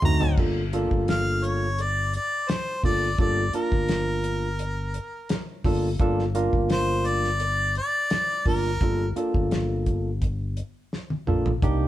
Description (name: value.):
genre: straight-eighth soul blues.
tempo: 85 BPM.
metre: 4/4.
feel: straight.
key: G minor.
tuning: A4 = 439 Hz.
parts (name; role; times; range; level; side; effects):
bright harmonica; melody; 0.0-9.1 s; Bb4 to Bb5; -27 LUFS; left 1 dB; overdrive.
barky tine electric piano; accompaniment; 0.0-11.9 s; A3 to Bb4; -26 LUFS; right 1 dB; overdrive.
fingered electric bass; bass; 0.0-11.9 s; G1 to D2; -27 LUFS; equal; none.
damped 70s drum kit; drums; 0.0-11.8 s; crash cymbal, hi-hat, kick drum, snare drum, toms; -26 LUFS; equal; none.
room: light reverb.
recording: band playing live in one room.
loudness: -22 LUFS.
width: side -14 dB against mid.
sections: 0.4-11.9 A section.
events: drum fill 0.0-0.4, 10.9-11.6.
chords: 0.4 Gm7.